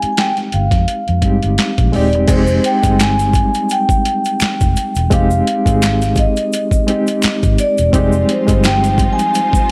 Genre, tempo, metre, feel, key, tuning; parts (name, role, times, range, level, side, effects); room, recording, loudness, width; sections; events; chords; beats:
R&B, neo-soul; 85 BPM; 4/4; swing 56% on 16ths; F dorian; A4 = 439 Hz
vibraphone with soft mallets; melody; 0.0-9.7 s; C5 to Ab5; -20 LUFS; equal
barky reed electric piano; accompaniment; 0.0-9.7 s; G3 to Ab4; -20 LUFS; equal; overdrive, fast tremolo
vintage muted fingered electric bass; bass; 0.0-9.1 s; Eb1 to G2; -19 LUFS; equal
boom bap sampler-style drum kit; drums; 0.0-9.7 s; crash cymbal, handclaps, hi-hat, kick drum, snare drum; -19 LUFS; equal; overdrive
tube shaker and finger snaps; percussion; 2.3-9.7 s; -30 LUFS; equal
warm symphonic string section; sustained chords; 7.9-9.7 s; F3 to C5; -29 LUFS; equal
small room reverb; -14 LUFS; mono
0.0-2.3 A section; 2.3-9.7 B section
0.0 Fm9
0.16 0.87 1.57 | 2.28 2.99 3.69 4.40 | 5.10 5.81 6.51 7.22 | 7.93 8.63 9.34